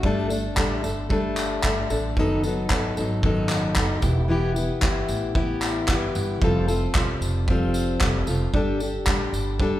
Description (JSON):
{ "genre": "acoustic pop", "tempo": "113 BPM", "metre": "4/4", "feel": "swing 60% on 16ths", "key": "G mixolydian", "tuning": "A4 = 439 Hz", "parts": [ { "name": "fingerpicked plugged-in steel-string acoustic guitar", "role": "accompaniment", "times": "0.0-9.8 s", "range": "F#2 to A4", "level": "-24 LUFS", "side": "left 2 dB", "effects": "none" }, { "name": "upright bass", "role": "bass", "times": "0.0-9.8 s", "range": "E1 to A1", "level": "-27 LUFS", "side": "right 1 dB", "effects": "none" }, { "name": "loose indie drum kit", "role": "drums", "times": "0.0-9.7 s", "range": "handclaps, kick drum, tambourine", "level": "-25 LUFS", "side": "right 1 dB", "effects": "none" } ], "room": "moderate recital hall reverb, RT60 1.3 s", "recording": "recorded in a church or concert hall", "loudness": "-21 LUFS", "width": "side -14 dB against mid", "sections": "0.0-9.8 A section", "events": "none", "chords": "0.0 Gsus2; 2.2 B7/F#; 4.0 Em; 6.4 Fadd9; 8.5 Gsus2" }